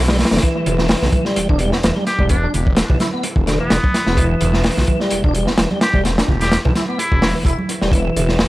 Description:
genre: breakbeat, breaks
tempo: 128 BPM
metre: 4/4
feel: swing 54% on 16ths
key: E minor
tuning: A4 = 442 Hz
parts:
  - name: phased detuned saw bass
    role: bass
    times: 0.0-8.4 s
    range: E1 to B1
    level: -19 LUFS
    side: equal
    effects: phaser
  - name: tonewheel organ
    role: riff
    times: 0.1-8.5 s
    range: D3 to E4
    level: -21 LUFS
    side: equal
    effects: chorus vibrato, fast rotary speaker, analog delay
  - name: crunchy breakbeat drum kit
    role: drums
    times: 0.1-8.5 s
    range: hi-hat, kick drum, snare drum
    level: -17 LUFS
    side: equal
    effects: analog delay
  - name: congas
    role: percussion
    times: 0.1-8.3 s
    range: none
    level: -28 LUFS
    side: right 2 dB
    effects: none
  - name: trumpet with straight mute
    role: melody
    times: 2.1-7.4 s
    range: B3 to G4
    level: -25 LUFS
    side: equal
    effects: small speaker sound, analog delay
room: light reverb, studio ambience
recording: echo-heavy mix, vinyl crackle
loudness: -14 LUFS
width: side -17 dB against mid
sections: 0.0-8.5 A section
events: none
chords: 0.0 Em7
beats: | 0.42 0.89 1.36 1.83 | 2.30 2.77 3.24 3.71 | 4.17 4.64 5.11 5.58 | 6.05 6.52 6.99 7.46 | 7.92 8.39

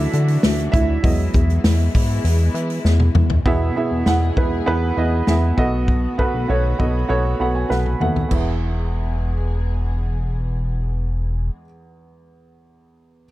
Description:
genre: piano-driven pop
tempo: 99 BPM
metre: 4/4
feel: straight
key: E major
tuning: A4 = 439 Hz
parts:
  - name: warm upright piano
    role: accompaniment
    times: 0.0-13.3 s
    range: E2 to B5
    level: -23 LUFS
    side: right 3 dB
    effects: none
  - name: warm studio string section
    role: sustained chords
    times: 0.0-11.5 s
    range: D#3 to G#4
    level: -30 LUFS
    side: left 3 dB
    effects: none
  - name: chorused synth bass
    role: bass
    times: 0.0-11.5 s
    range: E1 to E3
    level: -19 LUFS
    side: equal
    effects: none
  - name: natural country drum kit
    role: drums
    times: 0.1-8.5 s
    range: crash cymbal, hi-hat, kick drum, snare drum, toms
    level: -21 LUFS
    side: left 1 dB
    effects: none
room: small room ambience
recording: dark, warm production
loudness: -17 LUFS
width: side -16 dB against mid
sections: 0.0-3.5 A section; 3.5-8.3 B section; 8.3-10.7 C section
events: upright piano solo 0.0-3.5; drum fill 2.9-3.5, 7.7-8.3; upright piano fill 7.1-8.3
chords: 0.0 Dadd9; 1.0 Emaj7; 5.6 B7; 8.3 E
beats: 0.43 | 1.04 1.64 2.25 2.85 | 3.46 4.07 4.67 5.28 | 5.89 6.49 7.10 7.71 | 8.31 8.92 9.53 10.13

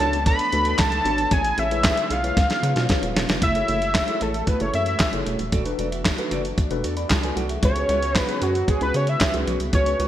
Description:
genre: early-eighties boogie funk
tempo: 114 BPM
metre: 4/4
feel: straight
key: F# minor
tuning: A4 = 444 Hz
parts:
  - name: fat analog lead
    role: melody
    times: 0.0-10.1 s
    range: F#4 to B5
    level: -23 LUFS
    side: equal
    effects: none
  - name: mellow tine electric piano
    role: accompaniment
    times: 0.0-10.1 s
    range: C#4 to B5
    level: -30 LUFS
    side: left 2 dB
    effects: medium stereo tremolo
  - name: warm analog pad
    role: sustained chords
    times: 0.0-10.1 s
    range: C#3 to F#4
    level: -34 LUFS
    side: left 1 dB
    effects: chorus
  - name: mellow electric guitar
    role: riff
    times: 0.0-10.1 s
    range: A3 to E5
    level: -32 LUFS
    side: right 4 dB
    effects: analog chorus
  - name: rubbery square bass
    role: bass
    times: 0.0-10.1 s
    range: D#1 to C#3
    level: -26 LUFS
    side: equal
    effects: none
  - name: dusty soul sampler-style drum kit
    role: drums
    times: 0.0-10.1 s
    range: handclaps, hi-hat, kick drum, snare drum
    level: -23 LUFS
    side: equal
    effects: gated reverb
room: moderate lush hall reverb, RT60 2.5 s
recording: bright 1980s-style digital production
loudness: -19 LUFS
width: side -12 dB against mid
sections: 0.0-3.4 A section; 3.4-10.1 B section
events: drum fill 2.4-3.4; analog synth lead solo 3.4-10.1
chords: 0.0 Bm9; 1.3 Amaj7; 2.4 C#7; 3.4 F#m9; 5.5 E9sus4; 7.6 C#7sus4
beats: 0.26 0.79 | 1.31 1.84 2.37 2.89 | 3.42 3.95 4.47 5.00 | 5.53 6.05 6.58 7.10 | 7.63 8.16 8.68 9.21 | 9.74

